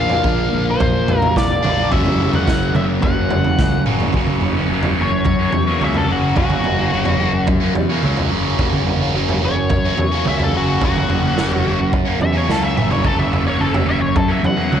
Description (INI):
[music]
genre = psychedelic rock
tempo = 108 BPM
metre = 4/4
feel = straight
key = F# mixolydian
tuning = A4 = 441 Hz
[part]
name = octave-fuzz lead guitar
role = melody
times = 0.0-14.8 s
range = F#4 to F#5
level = -22 LUFS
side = left 2 dB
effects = wah, distortion, slapback echo
[part]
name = cranked stack guitar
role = riff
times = 0.0-14.8 s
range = F#2 to D4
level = -19 LUFS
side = equal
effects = overdrive, phaser
[part]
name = fuzz fingered electric bass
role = bass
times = 0.0-14.8 s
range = E#1 to F#2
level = -22 LUFS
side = left 1 dB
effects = overdrive
[part]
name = raw garage drum kit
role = drums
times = 0.1-14.8 s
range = kick drum, snare drum, toms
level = -20 LUFS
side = right 2 dB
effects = none
[part]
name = congas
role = percussion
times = 0.5-4.1 s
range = none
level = -31 LUFS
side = left 11 dB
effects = none
[sound]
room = light reverb, small room ambience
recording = 1960s-style stereo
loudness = -15 LUFS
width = side -9 dB against mid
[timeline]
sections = 0.0-4.1 A section; 4.1-14.8 B section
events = drum fill 3.6-4.1, 12.5-13.0; lead electric guitar solo 4.1-14.8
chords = 0.0 A#; 1.9 F#